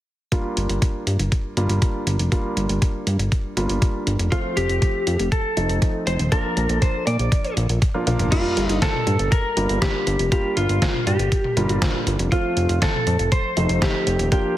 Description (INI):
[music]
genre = italo disco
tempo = 120 BPM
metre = 4/4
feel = straight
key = G minor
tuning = A4 = 440 Hz
[part]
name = warm baby grand piano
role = stabs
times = 0.3-14.6 s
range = F3 to F4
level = -27 LUFS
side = right 1 dB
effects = low-pass filter
[part]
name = detuned 8-bit digital drum machine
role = drums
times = 0.3-14.4 s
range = crash cymbal, hi-hat, snare drum, toms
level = -26 LUFS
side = left 1 dB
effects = none
[part]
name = electronic kick drum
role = drums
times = 0.3-14.4 s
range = none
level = -20 LUFS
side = equal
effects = none
[part]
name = fat analog bass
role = bass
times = 0.6-14.3 s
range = Eb1 to Bb2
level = -22 LUFS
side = equal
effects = tube saturation
[part]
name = lightly driven lead guitar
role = melody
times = 4.3-14.6 s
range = F4 to D5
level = -24 LUFS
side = equal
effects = tape echo
[sound]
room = moderate digital room reverb, RT60 1.1 s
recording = heavily compressed radio sound, multiband compression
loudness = -18 LUFS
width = side -13 dB against mid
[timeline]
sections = 0.3-8.3 A section; 8.3-14.6 B section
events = filter sweep on analog synth bass 0.3-8.3; filter sweep on grand piano 0.3-8.3; drum fill 8.1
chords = 0.3 Gm7; 4.3 F; 6.3 Bb; 8.3 Gm7; 12.3 F